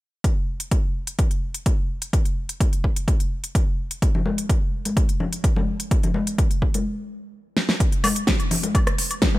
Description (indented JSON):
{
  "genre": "house",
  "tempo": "127 BPM",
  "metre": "4/4",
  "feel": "straight",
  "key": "none",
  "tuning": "none",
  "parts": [
    { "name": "electronic kick drum", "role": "drums", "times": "0.2-9.3 s", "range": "none", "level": "-21 LUFS", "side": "equal", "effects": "overdrive, small room ambience" },
    { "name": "pop drum kit", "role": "drums", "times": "0.2-9.3 s", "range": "hi-hat, rim click, snare drum", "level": "-25 LUFS", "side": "equal", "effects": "small room ambience" },
    { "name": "congas and woodblock", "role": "percussion", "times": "4.1-9.4 s", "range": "none", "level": "-26 LUFS", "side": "left 3 dB", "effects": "sidechain pumping on perc" }
  ],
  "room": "little or no reverb",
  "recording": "none",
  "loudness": "-20 LUFS",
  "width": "side -17 dB against mid",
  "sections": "0.2-7.8 A section; 7.8-9.4 B section",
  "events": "stop 6.9-7.8; drum fill 7.6",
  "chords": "none"
}